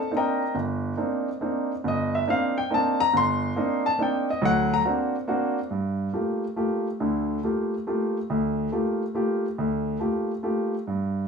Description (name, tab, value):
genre	jazz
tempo	140 BPM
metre	3/4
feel	swing 67% on 8ths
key	C dorian, G minor from 5.7 s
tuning	A4 = 439 Hz
part	warm grand piano	solo	0.0-11.2 s	G1 to C6	-23 LUFS	equal	none
room	moderate studio reverb, RT60 0.7 s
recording	studio ambience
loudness	-23 LUFS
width	side -5 dB against mid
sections	0.0-5.7 A section; 5.7-11.3 B section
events	none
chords	0.0 Cm9; 4.4 Daug7; 5.7 Gm9